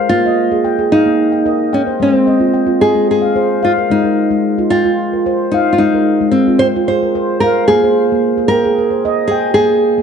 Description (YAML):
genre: world meditative, meditative tuned percussion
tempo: 222 BPM (eighths)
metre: 7/8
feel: straight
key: Ab major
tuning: A4 = 442 Hz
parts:
  - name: handpan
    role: arpeggios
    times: 0.0-10.0 s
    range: Ab3 to G5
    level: -15 LUFS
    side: left 1 dB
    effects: none
  - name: nylon-string guitar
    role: melody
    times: 0.1-10.0 s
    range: C4 to C5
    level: -13 LUFS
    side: right 1 dB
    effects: none
room: wet echo chamber reverb, RT60 1.9 s, small room ambience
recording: dark, warm production, nothing above 10.9 kHz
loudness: -11 LUFS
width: side -7 dB against mid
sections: 0.0-3.9 A section; 3.9-10.0 B section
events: none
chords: 0.1 Bb5; 2.0 Ab; 7.7 Bb7sus2